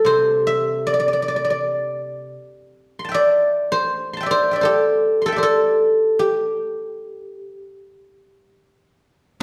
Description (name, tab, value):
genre	chinese traditional, Chinese solo plucked strings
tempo	78 BPM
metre	4/4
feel	rubato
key	G zhi mode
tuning	A4 = 440 Hz
part	guzheng	solo	0.0-9.4 s	C3 to C6	-20 LUFS	equal	none
room	wet recital hall reverb, RT60 1.2 s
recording	dark, warm production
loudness	-19 LUFS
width	mono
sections	0.0-9.4 A section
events	none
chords	none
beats	| 0.06 0.83 1.59 2.36 | 3.12 3.88 4.64 5.41 | 6.19 6.97 7.77 8.59 | 9.40